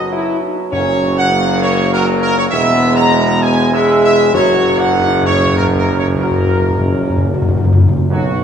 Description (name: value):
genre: classical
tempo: 92-101 BPM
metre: 3/4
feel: straight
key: unclear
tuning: A4 = 440 Hz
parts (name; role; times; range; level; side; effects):
- dark trumpet section; melody; 0.0-8.4 s; F#4 to A#5; -16 LUFS; equal; none
- mellow French horn section; sustained chords; 0.0-8.4 s; F#3 to G#4; -18 LUFS; left 3 dB; none
- warm trombone section; sustained chords; 0.0-8.3 s; F#2 to G#3; -21 LUFS; right 4 dB; none
- warm tuba; bass; 0.0-8.4 s; E1 to B1; -17 LUFS; right 3 dB; none
- timpani; percussion; 0.7-1.6, 4.3-8.4 s; F#2 to B2; -16 LUFS; left 1 dB; none
room: wet concert hall reverb, RT60 2.3 s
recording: minimal, uncompressed stereo recording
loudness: -11 LUFS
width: side -8 dB against mid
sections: 0.0-8.1 A section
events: timpani fill 4.3-8.1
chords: 0.0 B/F#; 0.7 F#; 2.5 E; 4.3 F#